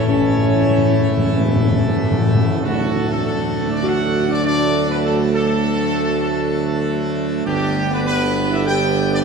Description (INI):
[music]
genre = classical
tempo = 98 BPM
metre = 4/4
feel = uneven beats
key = D major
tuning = A4 = 441 Hz
[part]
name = warm trumpet section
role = melody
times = 0.0-9.2 s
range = F#4 to G5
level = -24 LUFS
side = right 1 dB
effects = none
[part]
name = dark French horn section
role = sustained chords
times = 0.0-9.2 s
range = F#3 to G4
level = -23 LUFS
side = left 2 dB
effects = none
[part]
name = pipe organ, full organ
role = sustained chords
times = 0.0-9.2 s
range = D3 to D5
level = -24 LUFS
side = equal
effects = none
[part]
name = timpani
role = percussion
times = 0.0-2.6 s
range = A2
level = -20 LUFS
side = left 2 dB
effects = none
[part]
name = dark trombone section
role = sustained chords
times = 0.1-9.2 s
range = D3 to B3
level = -27 LUFS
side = right 3 dB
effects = none
[part]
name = warm tuba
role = bass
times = 0.1-9.2 s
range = E1 to D2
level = -22 LUFS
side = right 4 dB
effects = none
[sound]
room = wet cathedral reverb, RT60 6.0 s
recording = minimal, uncompressed stereo recording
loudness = -16 LUFS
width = side -5 dB against mid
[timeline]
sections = 0.0-2.6 A section; 2.6-9.2 B section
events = timpani fill 0.0-2.6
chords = 0.0 A; 2.6 D; 7.5 G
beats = | 0.09 0.73 1.37 1.99 | 2.63 3.24 3.85 4.45 | 5.06 5.66 6.26 6.87 | 7.46 8.07 8.67